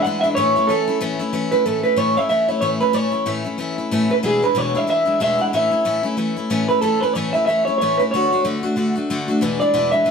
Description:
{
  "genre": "rock",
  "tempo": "186 BPM",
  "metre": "4/4",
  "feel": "swing 59% on 8ths",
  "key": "A major",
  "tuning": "A4 = 440 Hz",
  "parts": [
    { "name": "electric guitar through a small old amp", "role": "melody", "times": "0.0-10.1 s", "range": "G#4 to F#5", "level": "-17 LUFS", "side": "right 1 dB", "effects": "none" },
    { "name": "picked steel-string acoustic guitar", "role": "accompaniment", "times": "0.0-10.1 s", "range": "E2 to F#4", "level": "-21 LUFS", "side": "left 2 dB", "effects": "none" }
  ],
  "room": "wet studio reverb, RT60 0.9 s",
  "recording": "band playing live in one room",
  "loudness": "-17 LUFS",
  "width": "side -6 dB against mid",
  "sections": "0.0-1.7 A section; 1.7-10.1 B section",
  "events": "none",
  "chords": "0.4 A; 4.2 E7; 5.5 A; 8.1 D; 9.4 E7",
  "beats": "0.04 | 0.37 0.69 1.01 1.33 | 1.65 1.98 2.30 2.62 | 2.94 3.27 3.59 3.91 | 4.23 4.56 4.88 5.20 | 5.53 5.85 6.17 6.50 | 6.82 7.14 7.46 7.79 | 8.11 8.44 8.76 9.08 | 9.41 9.73 10.05"
}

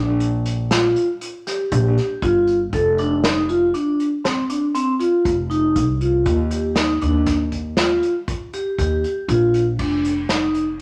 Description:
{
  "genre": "progressive instrumental, band music in an uneven meter",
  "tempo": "119 BPM",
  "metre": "7/4",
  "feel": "straight",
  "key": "unclear",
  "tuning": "A4 = 440 Hz",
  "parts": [
    { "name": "vibraphone with medium mallets", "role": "arpeggios", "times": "0.0-10.6 s", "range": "C4 to A4", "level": "-21 LUFS", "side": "equal", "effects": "none" },
    { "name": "upright bass", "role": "bass", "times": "0.0-10.8 s", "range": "F1 to Eb2", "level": "-24 LUFS", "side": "equal", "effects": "none" },
    { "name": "unplugged drum kit", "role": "drums", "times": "0.2-10.7 s", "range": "crash cymbal, hi-hat, kick drum, snare drum", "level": "-27 LUFS", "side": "equal", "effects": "none" }
  ],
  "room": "moderate large studio reverb, RT60 0.9 s",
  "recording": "none",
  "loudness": "-19 LUFS",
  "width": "mono",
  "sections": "0.0-9.8 A section; 9.8-10.8 B section",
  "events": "none",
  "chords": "0.0 Bb5; 2.7 F7(no3); 6.3 Eb; 9.8 F5",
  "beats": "0.21 0.71 1.22 1.72 2.23 | 2.73 3.24 3.74 4.25 4.75 5.25 5.76 | 6.26 6.77 7.27 7.78 8.28 8.78 9.29 | 9.79 10.30"
}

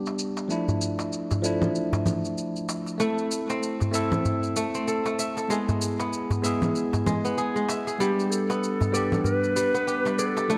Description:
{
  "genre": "organic downtempo",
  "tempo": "96 BPM",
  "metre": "4/4",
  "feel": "swing 58% on 16ths",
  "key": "unclear",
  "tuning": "A4 = 441 Hz",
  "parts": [
    { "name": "barky tine electric piano", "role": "accompaniment", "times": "0.0-10.6 s", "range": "F3 to A4", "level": "-30 LUFS", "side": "equal", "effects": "phaser, digital delay" },
    { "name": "shaker and congas", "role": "drums", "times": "0.1-10.6 s", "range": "none", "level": "-33 LUFS", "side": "equal", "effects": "low-pass filter on perc" },
    { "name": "darbuka", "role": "percussion", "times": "0.1-10.5 s", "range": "none", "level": "-32 LUFS", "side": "equal", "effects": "none" },
    { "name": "kora", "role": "arpeggios", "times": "3.0-10.6 s", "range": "G3 to E5", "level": "-31 LUFS", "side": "equal", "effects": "digital delay" },
    { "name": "reedy Native American-style cedar flute", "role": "melody", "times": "8.0-10.6 s", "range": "G4 to B4", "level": "-29 LUFS", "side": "equal", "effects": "digital delay" }
  ],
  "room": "wet lush hall reverb, RT60 2.0 s",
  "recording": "dark, warm production",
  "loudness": "-26 LUFS",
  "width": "mono",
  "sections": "0.0-10.6 A section",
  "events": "none",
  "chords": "0.0 G; 0.5 Dmadd9/F; 3.0 Am; 5.5 E; 8.0 G",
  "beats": "| 0.50 1.13 1.75 2.38 | 3.00 3.63 4.25 4.88 | 5.50 6.13 6.75 7.38 | 8.00 8.63 9.25 9.88 | 10.50"
}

